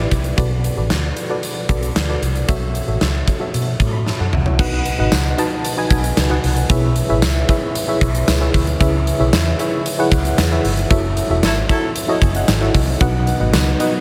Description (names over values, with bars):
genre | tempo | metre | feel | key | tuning
1980s-style pop | 114 BPM | 4/4 | straight | unclear | A4 = 440 Hz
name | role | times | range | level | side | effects
FM electric piano with tremolo | accompaniment | 0.0-14.0 s | B2 to B5 | -23 LUFS | equal | none
vintage muted fingered electric bass | bass | 0.0-13.7 s | E1 to B2 | -22 LUFS | equal | none
huge arena drum kit | drums | 0.1-13.9 s | crash cymbal, hi-hat, kick drum, snare drum, tambourine, toms | -21 LUFS | equal | none
warm horn section | stabs | 11.4-11.9 s | F#3 to A4 | -29 LUFS | equal | tape echo
string machine, violas | sustained chords | 13.0-14.0 s | F#3 to D#4 | -26 LUFS | equal | phaser, ensemble chorus
room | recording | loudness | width
light reverb, small room ambience | none | -17 LUFS | mono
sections
0.0-4.6 A section; 4.6-14.0 B section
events
drum fill 4.1-4.6; band accent 10.9-13.0; FM electric piano fill 12.0-13.0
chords
0.4 Bm7; 2.5 F#m7; 4.6 B; 6.7 E6; 8.8 C#m7; 10.9 F#m7; 13.0 B